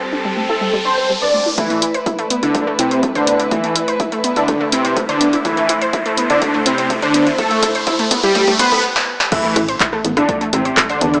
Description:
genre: melodic techno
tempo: 124 BPM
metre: 4/4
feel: straight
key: A minor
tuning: A4 = 440 Hz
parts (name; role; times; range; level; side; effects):
- dark studio string section; sustained chords; 0.0-8.8 s; G3 to C5; -26 LUFS; equal; sidechain pumping
- unison pluck; arpeggios; 0.0-11.2 s; G3 to C6; -24 LUFS; equal; sidechain pumping, analog delay
- tight sequencer bass; bass; 0.0-1.6, 9.6-11.2 s; G1 to E2; -23 LUFS; equal; sidechain pumping
- riser and impact; sound effects; 0.0-11.2 s; none; -27 LUFS; equal; none
- fat analog lead; melody; 0.5-11.2 s; C4 to D5; -21 LUFS; equal; ensemble chorus, sidechain pumping, tape echo
- big bright polysynth; second line; 1.6-11.2 s; C3 to B3; -25 LUFS; equal; chorus, phaser, sidechain pumping, analog delay
- electronic kick drum; drums; 1.6-10.9 s; none; -26 LUFS; equal; high-pass filter on kick, high-pass filter on room
- punchy analog drum machine; drums; 1.6-11.2 s; crash cymbal, handclaps, hi-hat, rim click, snare drum; -21 LUFS; equal; high-pass filter on hats, high-pass filter on snare, high-pass filter on cymbals, high-pass filter on room
room: light reverb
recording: dry, gritty hardware recording, small speaker sound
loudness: -16 LUFS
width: mono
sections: 0.0-1.6 A section; 1.6-9.3 B section; 9.3-11.2 C section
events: riser 0.0-1.6, 1.6-8.8; build-up 1.6-9.3; drum fill 5.5-8.8, 9.0-9.3; stop 8.8-9.3; drop 9.3-11.2; impact 9.3-11.2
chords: 0.0 Gsus4; 1.6 Amadd9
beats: 0.13 0.61 1.09 | 1.58 2.06 2.55 3.03 | 3.51 4.00 4.48 4.97 | 5.45 5.93 6.42 6.90 | 7.38 7.87 8.35 8.84 | 9.32 9.80 10.29 10.77

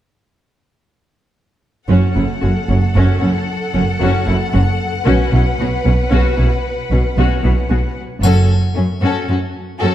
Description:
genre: cinematic, epic orchestral film score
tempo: 76 BPM (dotted quarters)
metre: 12/8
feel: straight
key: F# minor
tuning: A4 = 440 Hz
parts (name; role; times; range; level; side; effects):
- rich symphonic violin section; second line; 1.9-9.9 s; A3 to F#5; -23 LUFS; left 3 dB; none
- clear studio viola section; accompaniment; 1.9-9.9 s; C#4 to F#4; -22 LUFS; left 1 dB; none
- rich symphonic cello section; bass; 1.9-9.9 s; F#2 to B2; -18 LUFS; right 1 dB; none
- rich symphonic double bass section; bass; 1.9-8.5 s; F#1 to B1; -16 LUFS; right 1 dB; none
- clear studio violin section; melody; 8.2-9.9 s; C#4 to A4; -23 LUFS; left 5 dB; none
- triangle; percussion; 8.2-9.2 s; none; -32 LUFS; left 4 dB; none
room: wet scoring stage reverb, RT60 1.6 s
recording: dark, warm production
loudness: -13 LUFS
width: side -12 dB against mid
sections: 1.9-8.2 A section; 8.2-9.9 B section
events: none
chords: 1.9 F#m; 5.1 Bsus2; 8.2 F#m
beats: | 1.89 2.68 3.47 4.26 | 5.06 5.85 6.64 7.43 | 8.22 9.02 9.81

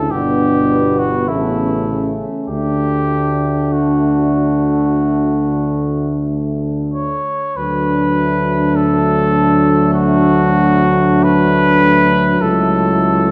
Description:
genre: classical, hymn-like piece for brass band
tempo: 44-54 BPM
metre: 4/4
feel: rubato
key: D major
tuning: A4 = 438 Hz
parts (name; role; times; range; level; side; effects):
- mellow cornet; melody; 0.0-13.3 s; E4 to C#5; -20 LUFS; equal; none
- mellow French horn section; second line; 0.0-13.3 s; B3 to E4; -22 LUFS; equal; none
- mellow euphonium; accompaniment; 0.0-13.3 s; B2 to F#3; -22 LUFS; equal; none
- warm trombone section; accompaniment; 0.0-13.3 s; A3 to B3; -26 LUFS; equal; none
- mellow tuba; bass; 0.0-13.3 s; G1 to D2; -21 LUFS; equal; none
room: wet recital hall reverb, RT60 1.9 s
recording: none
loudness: -15 LUFS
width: mono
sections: 0.0-7.6 A section; 7.6-13.3 B section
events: none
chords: 0.1 G; 1.3 A; 2.5 D; 12.4 A/C#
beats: 0.11 1.28 | 2.50 3.73 5.02 6.30 | 7.57 8.76 9.94 11.24 | 12.41

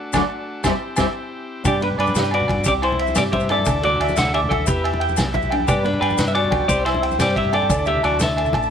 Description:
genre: highlife guitar band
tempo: 119 BPM (dotted quarters)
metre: 12/8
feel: straight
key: G major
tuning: A4 = 439 Hz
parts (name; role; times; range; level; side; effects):
- overdriven combo organ; sustained chords; 0.0-8.7 s; G3 to A4; -32 LUFS; left 1 dB; none
- nylon-string guitar; accompaniment; 0.1-8.2 s; F#3 to E4; -28 LUFS; left 5 dB; none
- electric guitar through a small old amp; arpeggios; 0.1-8.7 s; F#4 to A5; -23 LUFS; right 2 dB; tremolo, slapback echo
- fingered electric bass; bass; 0.1-8.7 s; A1 to G2; -25 LUFS; equal; none
- warm soul drum kit; drums; 0.1-8.6 s; kick drum, ride cymbal, snare drum; -26 LUFS; equal; none
- agogo bells; percussion; 0.1-8.7 s; none; -29 LUFS; right 1 dB; none
- congas; percussion; 0.1-8.7 s; none; -28 LUFS; equal; none
- maracas; percussion; 0.1-8.7 s; none; -32 LUFS; left 8 dB; none
- clean electric guitar; melody; 1.7-8.6 s; D4 to F#5; -21 LUFS; left 2 dB; none
room: light reverb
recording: none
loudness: -17 LUFS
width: side -8 dB against mid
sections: 0.0-1.6 A section; 1.6-8.7 B section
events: band accent 0.0-1.6; clean electric guitar solo 0.0-1.6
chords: 0.0 D; 0.6 C; 1.6 G; 2.7 C; 3.7 Dsus2; 4.7 Em; 5.7 G; 6.7 C; 7.7 Dsus2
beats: 0.14 0.64 1.14 | 1.65 2.15 2.66 3.16 | 3.67 4.17 4.67 5.18 | 5.68 6.19 6.69 7.20 | 7.70 8.21

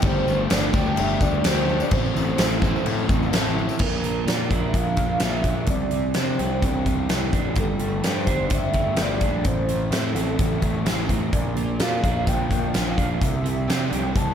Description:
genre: rock, shoegaze and dream pop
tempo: 128 BPM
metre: 4/4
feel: straight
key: Bb lydian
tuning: A4 = 440 Hz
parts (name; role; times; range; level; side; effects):
- warm velvety synth lead; melody; 0.0-14.3 s; A4 to A5; -29 LUFS; right 1 dB; chorus, tape echo
- overdriven semi-hollow guitar; riff; 0.0-14.3 s; A2 to G4; -30 LUFS; right 8 dB; reverse reverb
- overdriven semi-hollow guitar; riff; 0.0-3.8 s; A2 to G4; -29 LUFS; left 1 dB; none
- raw garage guitar; riff; 0.0-14.3 s; A2 to Bb4; -30 LUFS; left 8 dB; overdrive, lush chorus
- fuzz picked electric bass; bass; 0.0-14.3 s; G1 to C3; -26 LUFS; equal; overdrive
- huge arena drum kit; drums; 0.0-14.3 s; crash cymbal, hi-hat, kick drum, snare drum; -24 LUFS; equal; none
- tambourine; percussion; 0.0-3.8 s; none; -42 LUFS; left 12 dB; none
room: moderate plate reverb, RT60 1.3 s, studio reverb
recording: dreamy mix soaked in reverb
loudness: -20 LUFS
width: side -8 dB against mid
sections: 0.0-3.8 A section; 3.8-14.3 B section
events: none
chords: 0.0 Gsus2; 1.9 Am; 3.8 Bb; 5.7 Cadd9; 7.6 Gsus2; 9.5 Am; 11.3 Bb; 13.2 Cadd9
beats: | 0.04 0.51 0.97 1.45 | 1.92 2.38 2.85 3.33 | 3.80 4.27 4.74 5.21 | 5.69 6.16 6.63 7.10 | 7.57 8.04 8.52 8.99 | 9.46 9.93 10.40 10.87 | 11.34 11.81 12.28 12.75 | 13.22 13.69 14.15

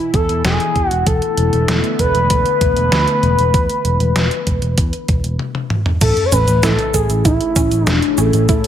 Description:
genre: synthwave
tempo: 97 BPM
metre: 4/4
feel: straight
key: A major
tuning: A4 = 440 Hz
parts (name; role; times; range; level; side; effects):
- expressive portamento lead; melody; 0.0-8.7 s; E4 to C#5; -18 LUFS; left 1 dB; wide subtle chorus, tape echo
- phased analog pad; sustained chords; 0.0-8.7 s; A2 to G#5; -25 LUFS; left 1 dB; phaser, chorus, sidechain pumping
- picked electric bass; bass; 0.1-8.6 s; E1 to A2; -17 LUFS; equal; sidechain pumping
- detuned 8-bit digital drum machine; drums; 0.1-8.7 s; crash cymbal, hi-hat, shaker, snare drum, toms; -20 LUFS; equal; none
- electronic kick drum; drums; 0.1-8.6 s; none; -18 LUFS; equal; overdrive
- analog pluck; arpeggios; 6.0-8.7 s; A3 to A4; -24 LUFS; right 4 dB; chorus, cassette tape, tape echo
- sub drop; sound effects; 6.0-8.5 s; none; -26 LUFS; equal; none
room: moderate plate reverb, RT60 1.6 s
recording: none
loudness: -13 LUFS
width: side -10 dB against mid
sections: 0.0-6.0 A section; 6.0-8.7 B section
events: drum fill 5.4-6.0; impact 6.0-8.5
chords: 0.0 Eadd11; 1.1 E7sus4; 6.0 A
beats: 0.45 | 1.07 1.69 2.30 2.92 | 3.54 4.16 4.78 5.40 | 6.01 6.63 7.25 7.87 | 8.49

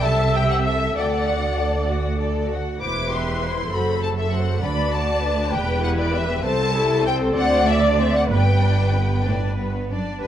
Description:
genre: quick classical-period movement for string orchestra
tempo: 65 BPM (dotted quarters)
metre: 6/8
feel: rubato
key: G major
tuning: A4 = 440 Hz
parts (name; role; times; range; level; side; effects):
- rich studio violin section; melody; 0.0-10.3 s; D5 to D6; -26 LUFS; left 4 dB; none
- rich studio violin section; second line; 0.0-10.3 s; B3 to G5; -27 LUFS; left 2 dB; none
- rich studio viola section; accompaniment; 0.0-10.3 s; D4 to E5; -24 LUFS; equal; none
- rich studio cello section; bass; 0.0-10.3 s; C2 to C3; -25 LUFS; right 2 dB; none
- rich studio double bass section; bass; 0.0-10.3 s; E1 to D2; -24 LUFS; right 2 dB; none
room: moderate concert hall reverb, RT60 1.9 s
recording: dark, warm production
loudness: -18 LUFS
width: side -10 dB against mid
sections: 0.0-10.2 A section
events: none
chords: 0.0 Am7/C; 1.0 D; 2.8 C/E; 3.7 F#dim; 4.6 Bm/D; 5.5 Em; 6.4 Am/C; 7.4 D9; 8.3 G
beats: 0.04 | 0.96 1.89 | 2.82 3.73 | 4.63 5.53 | 6.45 7.36 | 8.31 9.27 | 10.21

